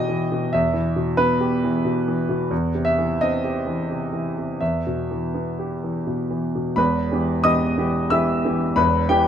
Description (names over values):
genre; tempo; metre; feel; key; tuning
neoclassical minimalist piano; 80-92 BPM; 3/4; rubato; E harmonic minor; A4 = 440 Hz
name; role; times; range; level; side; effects
warm grand piano; solo; 0.0-9.3 s; E1 to E6; -19 LUFS; equal; none
room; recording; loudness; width
light reverb; minimal, uncompressed stereo recording; -19 LUFS; side -8 dB against mid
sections
0.0-6.8 A section; 6.8-9.3 B section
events
none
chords
0.0 Em; 2.5 C/E; 4.6 Em